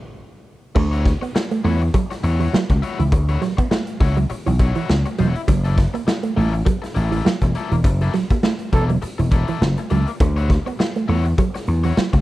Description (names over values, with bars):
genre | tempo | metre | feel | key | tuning
funk | 102 BPM | 4/4 | swing 56% on 16ths | unclear | A4 = 440 Hz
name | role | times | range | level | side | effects
biting overdriven guitar | accompaniment | 0.8-12.2 s | A#3 to C#5 | -29 LUFS | left 6 dB | none
electric guitar with an envelope filter | riff | 0.8-12.2 s | E3 to B3 | -22 LUFS | right 6 dB | none
vintage slap bass | bass | 0.8-12.2 s | E1 to E2 | -18 LUFS | equal | none
raw garage drum kit | drums | 0.8-12.2 s | crash cymbal, hi-hat, kick drum, snare drum | -21 LUFS | equal | none
mellow trombone | second line | 8.7-8.8 s | A4 | -22 LUFS | right 5 dB | none
room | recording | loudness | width
little or no reverb | none | -17 LUFS | side -16 dB against mid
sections
0.8-12.2 A section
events
stop 0.0-0.8; band accent 7.8-10.2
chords
0.0 N.C.; 0.8 Dmaj9; 5.5 F#7#9; 10.2 Dmaj9